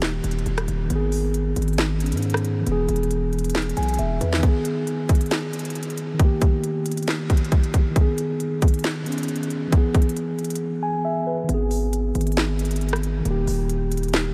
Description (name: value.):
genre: hip hop, trap.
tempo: 136 BPM.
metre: 4/4.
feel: half-time.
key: G# harmonic minor.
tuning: A4 = 441 Hz.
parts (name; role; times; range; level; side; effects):
mellow tine electric piano; accompaniment; 0.0-14.3 s; D#3 to G#5; -27 LUFS; equal; none.
distorted 808-style bass; bass; 0.0-4.4, 11.5-14.3 s; D#1 to G#2; -26 LUFS; equal; distortion.
trap drum kit; drums; 0.0-14.3 s; handclaps, hi-hat, kick drum, rim click, snare drum; -26 LUFS; equal; none.
room: light reverb.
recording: none.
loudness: -23 LUFS.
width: mono.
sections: 0.0-4.4 A section; 4.4-11.5 B section; 11.5-14.3 A section.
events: break 10.6-11.5.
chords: 0.0 D#; 0.9 G#m; 2.7 E; 4.4 G#m; 6.2 D#; 8.0 G#m; 9.7 E; 11.5 G#m; 13.3 D#.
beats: 0.02 0.46 | 0.90 1.34 1.78 2.22 | 2.67 3.11 3.55 3.99 | 4.43 4.87 5.31 5.75 | 6.20 6.64 7.08 7.52 | 7.96 8.40 8.84 9.28 | 9.72 10.17 10.61 11.05 | 11.49 11.93 12.37 12.81 | 13.25 13.70 14.14.